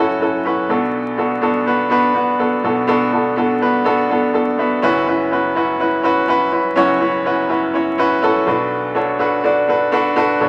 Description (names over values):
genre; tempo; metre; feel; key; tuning
pop; 124 BPM; 4/4; straight; unclear; A4 = 440 Hz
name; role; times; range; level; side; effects
bright upright piano; solo; 0.0-10.5 s; F#1 to B5; -17 LUFS; equal; none
room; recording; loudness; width
wet studio reverb, RT60 0.8 s; vinyl crackle; -17 LUFS; mono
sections
0.0-4.8 A section; 4.8-10.5 B section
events
upright piano fill 0.2-0.9, 4.1-4.8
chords
0.0 F#m7; 0.7 Bm7; 4.8 F#7sus4; 8.5 Bm7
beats
0.45 | 0.94 1.42 1.91 2.40 | 2.88 3.37 3.85 4.34 | 4.83 5.31 5.80 6.28 | 6.77 7.25 7.74 8.22 | 8.71 9.20 9.68 10.17